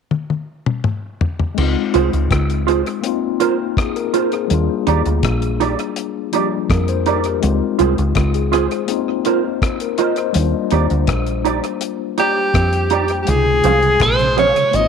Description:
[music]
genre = lovers rock reggae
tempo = 82 BPM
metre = 4/4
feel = straight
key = Eb major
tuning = A4 = 440 Hz
[part]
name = deep reggae drum kit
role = drums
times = 0.1-14.9 s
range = crash cymbal, hi-hat, kick drum, rim click, toms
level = -22 LUFS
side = left 3 dB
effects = tape echo
[part]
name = mellow tine electric piano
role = accompaniment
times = 1.5-14.9 s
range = C3 to Eb5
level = -21 LUFS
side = left 11 dB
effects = fast stereo tremolo, tape echo
[part]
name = deep dub fingered electric bass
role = bass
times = 1.6-14.9 s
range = Ab1 to F2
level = -18 LUFS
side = right 1 dB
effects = none
[part]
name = mellow electric guitar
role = stabs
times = 1.9-14.6 s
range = Eb4 to F5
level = -19 LUFS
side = right 13 dB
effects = ensemble chorus
[part]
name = bright alto saxophone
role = melody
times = 12.2-14.9 s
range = G4 to Eb5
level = -15 LUFS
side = equal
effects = tape echo
[part]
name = mellow tonewheel organ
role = accompaniment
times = 13.5-14.6 s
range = Db3 to Db4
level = -24 LUFS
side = right 10 dB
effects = slow rotary speaker, tape echo
[sound]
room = moderate spring reverb, RT60 1.6 s, small room ambience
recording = 1960s-style stereo with parts hard left and right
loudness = -15 LUFS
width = side -6 dB against mid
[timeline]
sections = 0.0-1.6 A section; 1.6-13.3 B section; 13.3-14.9 C section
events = drum fill 0.1-1.6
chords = 0.0 N.C.; 1.6 Dbmaj7; 3.0 Bb9sus4; 4.5 Ebmaj7; 7.4 Dbmaj7; 8.9 Bbsus24; 10.3 Ebmaj7; 13.3 Dbmaj7

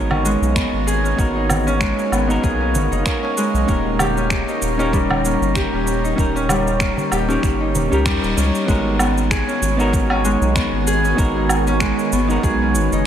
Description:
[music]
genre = organic downtempo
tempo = 96 BPM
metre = 4/4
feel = swing 56% on 16ths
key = G# minor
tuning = A4 = 441 Hz
[part]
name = semi-hollow electric guitar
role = accompaniment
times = 0.0-13.1 s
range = B3 to A#4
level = -24 LUFS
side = right 1 dB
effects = sidechain pumping, tape echo
[part]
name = Celtic harp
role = arpeggios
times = 0.0-13.1 s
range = G3 to G#4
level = -20 LUFS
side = equal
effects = vintage 12-bit sampler grit, tape echo
[part]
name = round analog bass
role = bass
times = 0.0-13.0 s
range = D#1 to D#2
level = -22 LUFS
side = equal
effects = sidechain pumping
[part]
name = drifting glass-harmonics texture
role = texture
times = 0.2-8.7 s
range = A#3 to A#4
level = -31 LUFS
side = left 2 dB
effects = chorus, built-in reverb
[part]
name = electronic woodblock, cabasa and finger snaps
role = drums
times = 0.1-13.0 s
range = none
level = -25 LUFS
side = right 1 dB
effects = none
[part]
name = darbuka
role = percussion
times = 0.1-8.5 s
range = none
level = -30 LUFS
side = right 2 dB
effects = none
[part]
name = electronic kick drum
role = drums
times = 0.6-12.6 s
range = none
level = -22 LUFS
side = equal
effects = none
[part]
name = ethereal airy pad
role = sustained chords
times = 9.6-13.1 s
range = D#3 to A#4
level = -25 LUFS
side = right 1 dB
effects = ensemble chorus, built-in reverb, phaser, sidechain pumping
[sound]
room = moderate huge ambient reverb, RT60 9.3 s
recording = dreamy mix soaked in reverb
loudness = -16 LUFS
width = side -9 dB against mid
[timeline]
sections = 0.0-8.7 A section; 8.7-13.1 B section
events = band accent 8.1-8.4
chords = 0.0 G#m9; 3.7 D#7; 8.7 G#m9

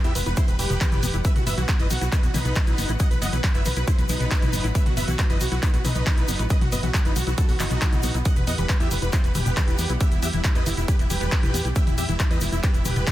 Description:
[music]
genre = uplifting trance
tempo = 137 BPM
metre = 4/4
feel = straight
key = E harmonic minor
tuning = A4 = 440 Hz
[part]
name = big supersaw lead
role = melody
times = 0.0-13.1 s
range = D#4 to F#5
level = -30 LUFS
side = right 1 dB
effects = vintage 12-bit sampler grit, sidechain pumping, dub echo
[part]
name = lush unison pad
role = sustained chords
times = 0.0-13.1 s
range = E3 to F#5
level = -34 LUFS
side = equal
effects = chorus, sidechain pumping
[part]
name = liquid acid bass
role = arpeggios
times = 0.0-13.1 s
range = E2 to E4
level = -33 LUFS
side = left 3 dB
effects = chorus, sidechain pumping, dub echo
[part]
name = solid FM bass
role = bass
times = 0.0-13.0 s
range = E1 to E2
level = -26 LUFS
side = equal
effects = sidechain pumping
[part]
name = punchy analog drum machine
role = drums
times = 0.0-13.1 s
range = handclaps, hi-hat, toms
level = -29 LUFS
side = equal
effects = none
[part]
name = egg shaker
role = percussion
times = 0.0-13.1 s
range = none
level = -37 LUFS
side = left 6 dB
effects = none
[part]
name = electronic kick drum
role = drums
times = 0.4-13.1 s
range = none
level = -21 LUFS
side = equal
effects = none
[sound]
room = little or no reverb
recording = dense, heavily limited modern master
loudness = -20 LUFS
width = side -14 dB against mid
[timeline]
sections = 0.0-13.1 A section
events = none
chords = 0.0 Emadd9; 1.2 Bsus4; 8.3 Emadd9

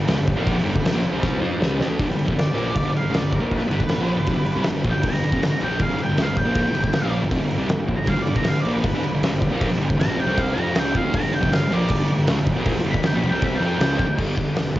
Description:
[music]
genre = garage rock duo or trio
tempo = 157 BPM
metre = 4/4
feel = straight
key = G major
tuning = A4 = 440 Hz
[part]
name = combo organ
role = sustained chords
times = 0.0-14.8 s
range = D4 to B4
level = -36 LUFS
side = equal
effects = none
[part]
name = thick fuzz guitar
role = riff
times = 0.0-14.8 s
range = F2 to F4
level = -22 LUFS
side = equal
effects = distortion
[part]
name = fuzz picked electric bass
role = bass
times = 0.0-14.8 s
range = F1 to F2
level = -29 LUFS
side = equal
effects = overdrive
[part]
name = oversized low-tuned drum kit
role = drums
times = 0.1-14.8 s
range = crash cymbal, hi-hat, kick drum, snare drum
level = -23 LUFS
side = equal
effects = cassette tape
[part]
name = octave-fuzz lead guitar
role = melody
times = 2.4-14.2 s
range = Bb4 to B5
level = -27 LUFS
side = right 1 dB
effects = distortion, cassette tape
[sound]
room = small room ambience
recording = home recording on cassette, nothing above 7.6 kHz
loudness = -19 LUFS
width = side -15 dB against mid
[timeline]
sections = 0.0-2.0 A section; 2.0-14.2 B section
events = drum fill 1.2-2.0; lead electric guitar solo 2.0-14.2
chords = 0.0 G

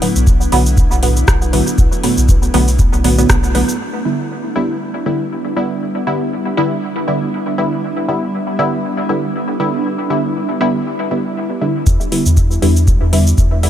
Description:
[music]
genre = dub techno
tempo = 119 BPM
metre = 4/4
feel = swing 56% on 16ths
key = E minor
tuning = A4 = 439 Hz
[part]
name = granular cloud pad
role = sustained chords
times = 0.0-13.7 s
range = G3 to E4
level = -22 LUFS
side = equal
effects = built-in reverb, sidechain pumping
[part]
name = filtered dub chord stab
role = stabs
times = 0.0-13.7 s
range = A2 to E4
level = -17 LUFS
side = equal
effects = chorus, phaser, cassette tape, sidechain pumping, dub echo
[part]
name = booming analog drum machine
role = drums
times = 0.0-3.8, 11.9-13.7 s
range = hi-hat, rim click, shaker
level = -21 LUFS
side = equal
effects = low-pass filter on perc, low-pass filter on hats, low-pass filter on snare
[part]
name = soft dub sub bass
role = bass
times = 0.2-3.6, 11.9-13.7 s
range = B1 to E2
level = -14 LUFS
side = equal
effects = sidechain pumping
[part]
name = electronic kick drum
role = drums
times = 0.3-3.4, 11.9-13.5 s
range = none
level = -14 LUFS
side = equal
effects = none
[sound]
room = light reverb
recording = none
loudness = -13 LUFS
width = side -10 dB against mid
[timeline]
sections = 0.0-3.8 A section; 3.8-11.9 B section; 11.9-13.7 A section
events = filter sweep on synth stab 0.0-3.8; band accent 3.3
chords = 0.0 Bm7; 3.8 Em7

